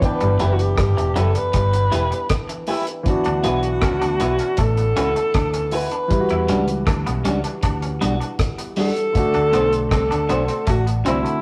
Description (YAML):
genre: lovers rock reggae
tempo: 79 BPM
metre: 4/4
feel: straight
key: D major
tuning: A4 = 442 Hz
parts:
  - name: warm alto saxophone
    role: melody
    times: 0.0-11.4 s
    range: E4 to B4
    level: -24 LUFS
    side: equal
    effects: none
  - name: warm grand piano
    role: accompaniment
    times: 0.0-11.4 s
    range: D3 to G5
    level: -29 LUFS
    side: equal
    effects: none
  - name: cloth-damped thuddy drum kit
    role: drums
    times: 0.0-11.4 s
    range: hi-hat, kick drum, rim click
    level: -26 LUFS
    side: equal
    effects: none
  - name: twangy electric guitar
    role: riff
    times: 0.2-11.2 s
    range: E3 to E4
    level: -31 LUFS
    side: equal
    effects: tape echo
  - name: vintage muted fingered electric bass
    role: bass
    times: 0.2-11.2 s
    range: E1 to E2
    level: -24 LUFS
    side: equal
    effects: none
  - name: electric guitar at the edge of break-up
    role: stabs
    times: 0.4-11.2 s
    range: G3 to C5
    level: -27 LUFS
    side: equal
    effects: none
room: moderate stone room reverb, RT60 1.0 s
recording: rough rehearsal-room recording, warm saturation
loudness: -20 LUFS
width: mono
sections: 0.0-11.4 A section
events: none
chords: 0.0 G6; 3.1 D69; 6.1 Em9; 9.1 D7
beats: | 0.02 0.78 1.54 2.30 | 3.06 3.82 4.58 5.34 | 6.11 6.87 7.63 8.39 | 9.15 9.91 10.67